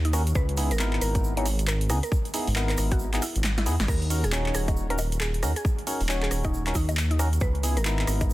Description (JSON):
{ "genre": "UK garage, two-step garage", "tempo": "136 BPM", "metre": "4/4", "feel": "swing 62% on 16ths", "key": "C# dorian", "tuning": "A4 = 440 Hz", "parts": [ { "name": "mallet-like synth pluck", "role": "melody", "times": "0.0-8.3 s", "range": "D#4 to C#5", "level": "-35 LUFS", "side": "equal", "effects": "chorus, cassette tape, dub echo" }, { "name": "dark detuned saw bass", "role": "bass", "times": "0.0-8.3 s", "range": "D#1 to E2", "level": "-25 LUFS", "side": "equal", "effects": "sidechain pumping" }, { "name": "punchy analog drum machine", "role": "drums", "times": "0.0-8.3 s", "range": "bongos, crash cymbal, handclaps, hi-hat, rim click, snare drum", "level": "-31 LUFS", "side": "equal", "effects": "none" }, { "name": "percussive organ stab", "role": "stabs", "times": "0.1-8.3 s", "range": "B3 to C#5", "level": "-32 LUFS", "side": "left 1 dB", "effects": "chorus, cassette tape" }, { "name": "egg shaker", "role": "percussion", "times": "0.1-8.3 s", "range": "none", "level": "-39 LUFS", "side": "right 4 dB", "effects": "none" }, { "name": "electronic kick drum", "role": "drums", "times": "0.4-8.3 s", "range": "none", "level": "-27 LUFS", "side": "equal", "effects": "none" } ], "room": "little or no reverb", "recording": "dense, heavily limited modern master", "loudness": "-23 LUFS", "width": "side -17 dB against mid", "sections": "0.0-8.3 A section", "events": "kick drops out 3.0-3.9; drum fill 3.4-3.9", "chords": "0.4 C#m9; 3.9 D#m7; 7.4 C#m9" }